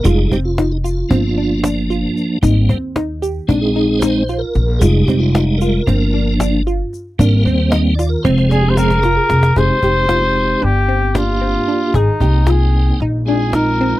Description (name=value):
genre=progressive instrumental, band music in an uneven meter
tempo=227 BPM (eighths)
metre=9/8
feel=straight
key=F dorian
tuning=A4 = 440 Hz
part: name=tonewheel organ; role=accompaniment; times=0.0-14.0 s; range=F3 to G5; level=-18 LUFS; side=right 2 dB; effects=overdrive, chorus vibrato, fast rotary speaker
part: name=tube shaker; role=percussion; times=0.0-9.4 s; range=none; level=-35 LUFS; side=left 8 dB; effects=none
part: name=glassy wavetable pluck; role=arpeggios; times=0.1-14.0 s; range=C4 to Ab4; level=-21 LUFS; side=equal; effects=chorus
part: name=upright bass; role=bass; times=0.1-13.9 s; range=F1 to Eb2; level=-16 LUFS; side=equal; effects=none
part: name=cajon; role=drums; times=0.1-13.9 s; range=none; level=-18 LUFS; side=equal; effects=none
part: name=mellow trumpet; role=melody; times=8.5-14.0 s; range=Eb4 to C5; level=-18 LUFS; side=left 1 dB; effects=none
room=little or no reverb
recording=dry, close 1970s-style studio recording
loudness=-13 LUFS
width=side -16 dB against mid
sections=0.0-9.6 A section; 9.6-14.0 B section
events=tonewheel organ solo 0.0-9.6; drum fill 8.0-9.6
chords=0.1 Fm7; 1.1 Gm7; 2.4 Abmaj7; 3.5 Bb7sus4; 4.8 Fm7; 5.9 Gm7; 7.2 Abmaj7; 8.2 Fm; 9.6 Fm7; 10.6 Gm7; 11.9 Abmaj7; 13.0 Bb7sus4